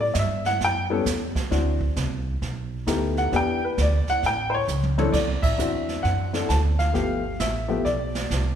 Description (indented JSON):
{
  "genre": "jazz piano trio",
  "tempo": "132 BPM",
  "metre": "4/4",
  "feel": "swing 65% on 8ths",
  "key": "D mixolydian",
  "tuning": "A4 = 440 Hz",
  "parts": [
    { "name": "warm upright piano", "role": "melody", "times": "0.0-8.6 s", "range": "E3 to A5", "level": "-24 LUFS", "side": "left 2 dB", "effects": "none" },
    { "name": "upright bass", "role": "bass", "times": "0.0-8.6 s", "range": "G1 to A2", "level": "-26 LUFS", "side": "right 1 dB", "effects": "none" },
    { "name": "jazz brush drum kit", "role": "drums", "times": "0.1-8.6 s", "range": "brushed snare drum, crash cymbal, hi-hat, kick drum, snare drum, toms", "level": "-29 LUFS", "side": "right 3 dB", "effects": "none" }
  ],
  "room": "moderate scoring stage reverb, RT60 1.6 s",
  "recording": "recorded in a church or concert hall",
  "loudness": "-21 LUFS",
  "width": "side -9 dB against mid",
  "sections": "0.0-5.1 A section; 5.1-8.6 B section",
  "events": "upright piano solo 0.0-5.1; drum fill 4.7-5.1; band accent 5.4",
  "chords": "0.0 A7(no3); 1.5 D9; 2.4 B7alt; 3.3 Em7; 4.2 A; 5.1 D9; 6.9 G9",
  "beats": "0.14 0.60 1.05 | 1.51 1.96 2.41 2.87 | 3.32 3.77 4.22 4.68 | 5.13 5.58 6.04 6.49 | 6.95 7.40 7.85 8.31"
}